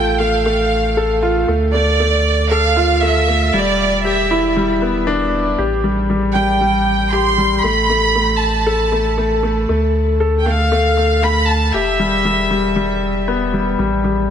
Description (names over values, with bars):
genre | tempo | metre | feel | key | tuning
piano and strings electronica | 117 BPM | 4/4 | straight | unclear | A4 = 440 Hz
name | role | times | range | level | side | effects
rich chamber violin section | melody | 0.0-13.3 s | D5 to C6 | -18 LUFS | right 2 dB | none
clear upright piano | riff | 0.0-14.3 s | G3 to A4 | -17 LUFS | left 2 dB | digital delay
warm sub bass | bass | 0.0-14.3 s | E1 to D2 | -20 LUFS | right 1 dB | none
room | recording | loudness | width
moderate huge ambient reverb, RT60 4.7 s | none | -14 LUFS | side -8 dB against mid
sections
0.0-14.3 A section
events
none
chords
0.0 F/A; 1.5 Dm; 3.5 Em7; 5.6 Am7; 7.6 Asus2; 9.7 Dm; 11.7 Em; 13.8 A5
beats
0.46 0.97 | 1.48 2.00 2.51 3.02 | 3.53 4.05 4.56 5.07 | 5.58 6.10 6.61 7.12 | 7.64 8.15 8.66 9.18 | 9.69 10.20 10.71 11.23 | 11.74 12.25 12.76 13.28 | 13.79